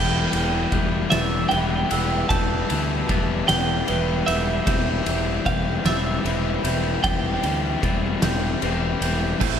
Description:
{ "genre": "post-rock", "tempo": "51 BPM (dotted quarters)", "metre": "6/8", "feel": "straight", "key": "unclear", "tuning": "A4 = 438 Hz", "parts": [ { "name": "twelve-string electric guitar", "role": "melody", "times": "0.0-9.0 s", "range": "E5 to A5", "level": "-27 LUFS", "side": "right 4 dB", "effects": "spring reverb, digital delay" }, { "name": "electric guitar through a small old amp", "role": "arpeggios", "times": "0.0-9.6 s", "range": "E2 to B4", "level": "-32 LUFS", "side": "right 3 dB", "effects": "wide subtle chorus, digital delay" }, { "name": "glockenspiel with soft plastic mallets", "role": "arpeggios", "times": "0.0-9.6 s", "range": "E6 to A6", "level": "-34 LUFS", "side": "right 10 dB", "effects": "digital delay" }, { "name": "distorted electric guitar", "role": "riff", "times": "0.0-9.6 s", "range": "A2 to E4", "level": "-26 LUFS", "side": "left 8 dB", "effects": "distortion" }, { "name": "fuzz fingered electric bass", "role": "bass", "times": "0.0-9.6 s", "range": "E1 to D2", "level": "-26 LUFS", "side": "equal", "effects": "overdrive" }, { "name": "oversized low-tuned drum kit", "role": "drums", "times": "0.3-9.6 s", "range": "crash cymbal, kick drum, ride cymbal, snare drum", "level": "-26 LUFS", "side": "equal", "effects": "none" }, { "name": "overdriven semi-hollow guitar", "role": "riff", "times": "9.4-9.6 s", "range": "A2 to E4", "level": "-25 LUFS", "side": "right 16 dB", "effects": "none" } ], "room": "light reverb, small room reverb", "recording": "none", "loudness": "-20 LUFS", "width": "side -8 dB against mid", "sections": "0.0-9.6 A section", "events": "none", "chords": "0.0 Em; 4.7 Cmaj7/E" }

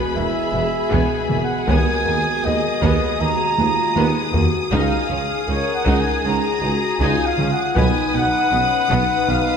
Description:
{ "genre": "cinematic, epic orchestral film score", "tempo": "79 BPM", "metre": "4/4", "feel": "straight", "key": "unclear", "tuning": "A4 = 440 Hz", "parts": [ { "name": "rich symphonic violin section", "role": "melody", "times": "0.0-9.6 s", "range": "Cb6 to Eb6", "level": "-27 LUFS", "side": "left 2 dB", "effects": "none" }, { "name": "rich studio violin section", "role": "second line", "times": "0.0-9.6 s", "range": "G#4 to Cb5", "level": "-29 LUFS", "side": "left 5 dB", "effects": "none" }, { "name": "clear symphonic viola section", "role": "accompaniment", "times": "0.0-9.4 s", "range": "Bb3 to Eb4", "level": "-29 LUFS", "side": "right 1 dB", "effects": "none" }, { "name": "mellow French horn section", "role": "sustained chords", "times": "0.0-9.6 s", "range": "Db4 to Bb4", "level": "-26 LUFS", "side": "left 4 dB", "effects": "none" }, { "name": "warm trombone section", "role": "sustained chords", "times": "0.0-9.5 s", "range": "B2 to Cb4", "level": "-30 LUFS", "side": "right 5 dB", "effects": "none" }, { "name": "dark trumpet section", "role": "stabs", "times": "0.2-9.6 s", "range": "Db5 to Bb5", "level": "-22 LUFS", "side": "equal", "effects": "none" }, { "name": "dark tuba", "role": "bass", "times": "0.2-9.4 s", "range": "E1 to Eb2", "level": "-26 LUFS", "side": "right 3 dB", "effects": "none" }, { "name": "rich symphonic cello section", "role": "bass", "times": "0.2-9.4 s", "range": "Db2 to Cb3", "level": "-28 LUFS", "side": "right 2 dB", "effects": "none" }, { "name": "rich symphonic double bass section", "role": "bass", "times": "0.2-9.4 s", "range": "E1 to Eb2", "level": "-27 LUFS", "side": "right 3 dB", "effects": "none" }, { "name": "taiko ensemble", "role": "drums", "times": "0.9-9.6 s", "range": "none", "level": "-24 LUFS", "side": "left 1 dB", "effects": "none" } ], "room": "wet concert hall reverb, RT60 2.3 s", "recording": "none", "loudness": "-16 LUFS", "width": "side -7 dB against mid", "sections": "0.0-9.6 A section", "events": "drum fill 3.6-4.7", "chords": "0.0 E; 1.7 Abmadd9/Eb; 4.7 Dbadd9; 7.8 Cb" }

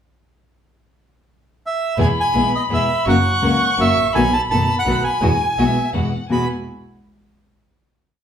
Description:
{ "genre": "tango", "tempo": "167 BPM", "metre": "3/4", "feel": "rubato", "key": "E major", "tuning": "A4 = 440 Hz", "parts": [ { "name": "bandoneon", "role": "melody", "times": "1.7-6.5 s", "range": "D#5 to B5", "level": "-20 LUFS", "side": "right 2 dB", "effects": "none" }, { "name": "warm violin", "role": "second line", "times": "2.0-6.5 s", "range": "E5 to C#6", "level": "-24 LUFS", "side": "left 4 dB", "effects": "none" }, { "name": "nylon-string guitar", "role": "accompaniment", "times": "2.0-6.5 s", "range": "E2 to F#4", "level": "-20 LUFS", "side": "left 2 dB", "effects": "none" }, { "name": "clear studio string section", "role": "stabs", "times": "2.0-6.5 s", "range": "G#3 to A#4", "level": "-30 LUFS", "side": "right 2 dB", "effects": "none" }, { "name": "clear double bass", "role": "bass", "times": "2.0-6.5 s", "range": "F#1 to E2", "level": "-22 LUFS", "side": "right 1 dB", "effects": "none" } ], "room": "wet large studio reverb, RT60 0.8 s", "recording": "band playing live in one room, faint mains hum", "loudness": "-15 LUFS", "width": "side -8 dB against mid", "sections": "0.9-2.0 pickup bar; 2.0-6.3 A section; 6.3-7.4 final chord", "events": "none", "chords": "0.9 N.C.; 2.0 E; 3.1 F#; 4.1 B7; 5.2 Eadd9" }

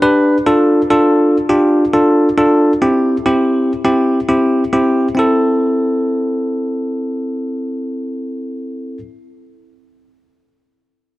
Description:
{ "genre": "pop", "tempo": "102 BPM", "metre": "4/4", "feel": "straight", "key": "A minor", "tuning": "A4 = 442 Hz", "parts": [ { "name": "bell-like tine electric piano", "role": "solo", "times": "0.0-9.0 s", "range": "C4 to B4", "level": "-12 LUFS", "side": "equal", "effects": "none" } ], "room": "wet plate reverb, RT60 2.9 s", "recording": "none", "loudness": "-12 LUFS", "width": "side -17 dB against mid", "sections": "0.0-5.2 A section; 5.2-7.5 B section", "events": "none", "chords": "0.5 Dm; 2.8 C; 5.2 Am" }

